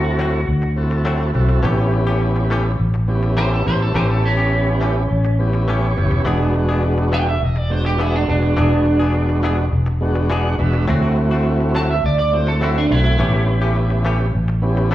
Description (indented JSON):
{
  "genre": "blues",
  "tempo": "104 BPM",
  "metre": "4/4",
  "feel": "straight",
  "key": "A mixolydian",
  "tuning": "A4 = 444 Hz",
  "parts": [
    { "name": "electric guitar at the edge of break-up", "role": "melody", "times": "0.0-14.0 s", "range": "C#4 to A5", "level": "-22 LUFS", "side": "right 2 dB", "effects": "lush chorus, slapback echo" },
    { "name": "tonewheel organ", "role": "accompaniment", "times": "0.0-14.9 s", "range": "G#3 to F#5", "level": "-22 LUFS", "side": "right 2 dB", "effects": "overdrive, slow rotary speaker, slapback echo" },
    { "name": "direct-recorded clean electric guitar", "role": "stabs", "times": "0.0-14.9 s", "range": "E3 to G#4", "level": "-27 LUFS", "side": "left 4 dB", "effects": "none" },
    { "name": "fingered electric bass", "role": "bass", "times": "0.0-14.9 s", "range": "E1 to D2", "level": "-18 LUFS", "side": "equal", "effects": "none" }
  ],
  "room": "light reverb",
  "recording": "live gig heard through the venue's PA, club reverb",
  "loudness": "-15 LUFS",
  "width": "side -14 dB against mid",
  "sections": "0.0-14.9 A section",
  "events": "tonewheel organ fill 5.4-6.3, 10.0-10.9, 14.6-14.9",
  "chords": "0.0 D7; 1.6 A7; 6.3 E7; 10.9 D7; 13.2 A7"
}